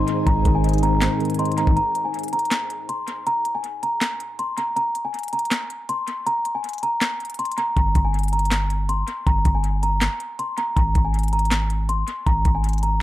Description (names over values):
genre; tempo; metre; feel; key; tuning
hip hop, trap; 160 BPM; 4/4; half-time; G phrygian; A4 = 441 Hz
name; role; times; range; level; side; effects
small celesta; melody; 0.0-13.0 s; Ab5 to C6; -24 LUFS; equal; analog delay
tine electric piano; accompaniment; 0.0-1.8 s; Ab2 to Eb4; -24 LUFS; equal; medium stereo tremolo, analog delay
ethereal airy pad; sustained chords; 0.0-1.7 s; Eb4 to Ab5; -32 LUFS; left 1 dB; ensemble chorus, built-in reverb
long sustained 808-style bass; bass; 0.0-1.8, 7.8-13.0 s; G1 to Ab1; -21 LUFS; equal; none
trap drum kit; drums; 0.1-12.9 s; handclaps, hi-hat, kick drum, snare drum; -24 LUFS; equal; analog delay
room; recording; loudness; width
light reverb, digital ambience; echo-heavy mix; -20 LUFS; side -15 dB against mid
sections
0.0-1.8 A section; 1.8-13.0 B section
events
break 1.8-7.8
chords
0.0 Ab; 1.8 N.C.; 7.8 Gm; 10.8 N.C.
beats
| 0.27 0.64 1.02 1.39 | 1.77 2.14 2.52 2.89 | 3.27 3.64 4.02 4.39 | 4.77 5.14 5.52 5.89 | 6.27 6.64 7.02 7.39 | 7.77 8.14 8.52 8.89 | 9.27 9.64 10.02 10.39 | 10.77 11.14 11.52 11.89 | 12.27 12.64 13.02